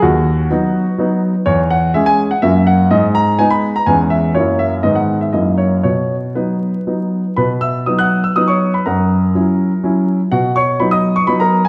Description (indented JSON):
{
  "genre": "classical-period piano sonatina",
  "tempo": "123 BPM",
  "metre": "3/4",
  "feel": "rubato",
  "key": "B major",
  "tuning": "A4 = 441 Hz",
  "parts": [
    { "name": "warm grand piano", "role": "solo", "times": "0.0-11.7 s", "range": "D#2 to F#6", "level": "-15 LUFS", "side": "equal", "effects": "none" }
  ],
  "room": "wet recital hall reverb, RT60 1.6 s",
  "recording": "vinyl crackle",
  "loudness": "-15 LUFS",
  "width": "mono",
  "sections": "0.0-7.4 A section; 7.4-11.7 B section",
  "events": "none",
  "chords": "0.0 B/D#; 1.5 C#m/E; 2.4 F#7; 2.9 G#m; 3.9 C#m7/E; 4.3 F#7; 4.8 G#m; 5.3 F#7; 5.8 B; 8.9 F#7; 10.3 B",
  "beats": "| 0.02 0.50 0.98 | 1.46 1.94 2.42 | 2.90 3.38 3.86 | 4.35 4.83 5.33 | 5.84 6.36 6.86 | 7.37 7.86 8.36 | 8.85 9.35 9.84 | 10.32 10.81 11.29"
}